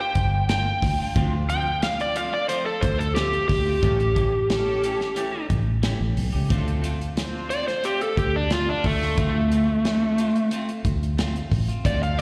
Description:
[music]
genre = straight-eighth soul blues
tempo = 90 BPM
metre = 4/4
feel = straight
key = D minor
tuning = A4 = 441 Hz
[part]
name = overdriven slide guitar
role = melody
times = 0.0-12.2 s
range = A3 to G5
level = -26 LUFS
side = equal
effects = slapback echo
[part]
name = clean electric guitar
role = stabs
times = 0.0-12.2 s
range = E3 to G4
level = -37 LUFS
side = equal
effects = slapback echo, analog delay
[part]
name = fingered electric bass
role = bass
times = 0.2-12.2 s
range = G1 to D2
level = -27 LUFS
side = equal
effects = none
[part]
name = warm soul drum kit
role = drums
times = 0.2-12.2 s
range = hi-hat, kick drum, snare drum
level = -29 LUFS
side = equal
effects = none
[part]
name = clear studio string section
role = sustained chords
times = 1.2-12.2 s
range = C4 to D5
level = -40 LUFS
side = equal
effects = none
[sound]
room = light reverb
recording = live gig heard through the venue's PA, recital hall reverb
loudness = -23 LUFS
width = mono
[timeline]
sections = 0.0-6.5 A section; 6.5-12.2 A section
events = electric slide guitar solo 0.0-6.5, 6.5-12.2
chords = 0.0 Gm7; 1.2 Dm7; 3.8 A7; 6.5 Dm7

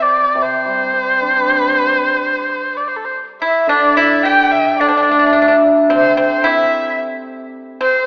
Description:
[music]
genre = chinese traditional, Chinese chamber ensemble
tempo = 109 BPM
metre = 4/4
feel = rubato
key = C gong mode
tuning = A4 = 438 Hz
[part]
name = dark erhu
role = melody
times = 0.0-8.1 s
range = A4 to G5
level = -14 LUFS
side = equal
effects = none
[part]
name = hammered dulcimer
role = accompaniment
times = 0.0-7.5 s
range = C3 to G4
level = -17 LUFS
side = equal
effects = none
[part]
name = bright large dizi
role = second line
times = 3.4-8.1 s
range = C5 to G5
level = -18 LUFS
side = equal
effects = none
[part]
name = pipa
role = second line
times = 3.4-8.1 s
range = C4 to G4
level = -17 LUFS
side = equal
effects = none
[sound]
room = wet concert hall reverb, RT60 2.3 s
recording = AM radio sound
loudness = -11 LUFS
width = side -32 dB against mid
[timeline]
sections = 0.0-3.7 A section; 3.7-8.1 B section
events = none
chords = none

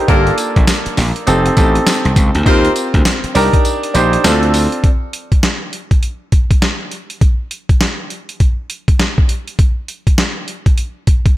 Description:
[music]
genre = R&B, new jack swing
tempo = 101 BPM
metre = 4/4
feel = swing 62% on 16ths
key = G minor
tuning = A4 = 440 Hz
[part]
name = clear baby grand piano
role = accompaniment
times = 0.0-4.9 s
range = Bb3 to C5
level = -16 LUFS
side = right 1 dB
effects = none
[part]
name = warm horn section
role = stabs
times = 0.1-2.7 s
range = Bb3 to C5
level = -20 LUFS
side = left 3 dB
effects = ping-pong delay
[part]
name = gritty slap bass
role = bass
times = 0.1-4.7 s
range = F1 to Eb2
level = -15 LUFS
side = equal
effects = overdrive
[part]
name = boom bap sampler-style drum kit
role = drums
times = 0.1-11.4 s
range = hi-hat, kick drum, snare drum, tambourine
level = -13 LUFS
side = equal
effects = gated reverb
[sound]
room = little or no reverb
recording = none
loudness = -12 LUFS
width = side -15 dB against mid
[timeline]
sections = 0.0-4.8 A section; 4.8-11.4 B section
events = kick muted 3.6-4.8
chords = 0.1 Gm7; 1.3 F9; 2.5 Eb6; 3.4 Cm7; 4.2 Dm7; 4.8 N.C.

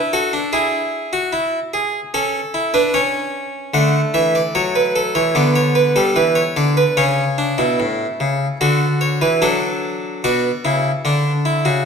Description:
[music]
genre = classical, baroque-style 3-part fugue for harpsichord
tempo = 74 BPM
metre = 4/4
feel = straight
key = D major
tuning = A4 = 437 Hz
[part]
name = harpsichord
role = solo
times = 0.0-11.8 s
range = A2 to F#5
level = -15 LUFS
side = equal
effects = none
[sound]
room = wet recital hall reverb, RT60 1.6 s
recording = none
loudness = -15 LUFS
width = side -6 dB against mid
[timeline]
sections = 0.0-10.2 A section; 10.2-11.9 B section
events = none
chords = 0.0 D; 0.5 E; 2.1 A/C#; 3.7 D; 5.4 G/D; 7.0 A; 8.6 D; 10.2 Bm

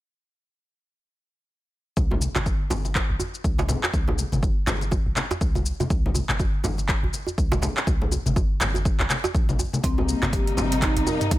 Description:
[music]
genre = afro house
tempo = 122 BPM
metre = 4/4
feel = swing 58% on 16ths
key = unclear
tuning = A4 = 440 Hz
[part]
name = warm 808-style bass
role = bass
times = 2.0-11.4 s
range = G1 to C2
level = -27 LUFS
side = equal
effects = sidechain pumping
[part]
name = afro-pop drum kit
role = drums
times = 2.0-11.4 s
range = handclaps, hi-hat, shaker, toms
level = -28 LUFS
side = equal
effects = none
[part]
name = electronic kick drum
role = drums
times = 2.0-11.4 s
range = none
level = -25 LUFS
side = equal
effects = overdrive
[part]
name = congas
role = percussion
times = 2.0-11.2 s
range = none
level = -29 LUFS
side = left 2 dB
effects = none
[part]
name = djembe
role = percussion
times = 2.1-11.2 s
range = none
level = -31 LUFS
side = right 3 dB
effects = none
[part]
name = warm studio string section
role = sustained chords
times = 9.8-11.4 s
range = C3 to Eb4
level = -29 LUFS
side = left 1 dB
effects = sidechain pumping
[part]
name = marimba with soft mallets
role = arpeggios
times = 9.8-11.4 s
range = Bb3 to Bb4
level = -26 LUFS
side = left 1 dB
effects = sidechain pumping, ping-pong delay
[sound]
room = little or no reverb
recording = none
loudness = -21 LUFS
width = side -16 dB against mid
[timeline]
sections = 2.0-11.4 A section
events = none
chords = 2.0 Gsus4; 9.8 Eb6/G

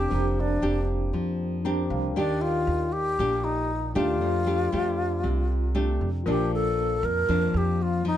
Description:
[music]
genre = bossa nova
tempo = 117 BPM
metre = 4/4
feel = straight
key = F major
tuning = A4 = 440 Hz
[part]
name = bright alto flute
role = melody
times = 0.0-8.2 s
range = D4 to Bb4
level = -27 LUFS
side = left 2 dB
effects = none
[part]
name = mellow tine electric piano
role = accompaniment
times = 0.0-8.2 s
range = Bb3 to Bb5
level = -34 LUFS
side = right 3 dB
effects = medium stereo tremolo
[part]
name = nylon-string guitar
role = accompaniment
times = 0.0-8.2 s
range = F2 to G4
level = -28 LUFS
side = left 2 dB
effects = none
[part]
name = upright bass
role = bass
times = 0.0-8.2 s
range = F1 to F2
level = -28 LUFS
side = right 1 dB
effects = none
[part]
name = worn celesta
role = second line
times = 6.3-8.2 s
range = Bb4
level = -36 LUFS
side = left 8 dB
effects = none
[sound]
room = little or no reverb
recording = dark, warm production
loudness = -23 LUFS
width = side -11 dB against mid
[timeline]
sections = 0.0-6.3 A section; 6.3-8.2 B section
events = tine electric piano fill 1.4-2.2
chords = 0.0 Bb69/F; 2.2 Ebmaj7; 4.2 F69; 6.3 Bbmaj7

